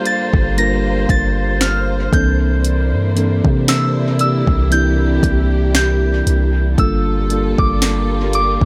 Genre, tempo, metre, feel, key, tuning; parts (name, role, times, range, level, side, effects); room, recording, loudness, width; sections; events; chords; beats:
contemporary R&B; 58 BPM; 4/4; swing 54% on 16ths; G dorian; A4 = 440 Hz
soft synth bell; melody; 0.0-8.7 s; D6 to Bb6; -24 LUFS; equal; chorus, dub echo
mellow tine electric piano; accompaniment; 0.0-8.7 s; E3 to Bb4; -23 LUFS; equal; dub echo
warm studio string section; sustained chords; 0.0-8.7 s; C3 to C5; -26 LUFS; equal; sidechain pumping
smooth R&B drum kit; drums; 0.1-8.7 s; hi-hat, kick drum, snare drum; -20 LUFS; equal; overdrive
long sustained 808-style bass; bass; 0.3-8.7 s; G1 to C3; -20 LUFS; equal
digital ambience; echo-heavy mix; -16 LUFS; mono
0.0-8.7 A section
0.0 Gm9; 2.1 C13; 6.8 Gm9
0.57 1.61 | 2.64 3.68 4.71 5.75 | 6.78 7.82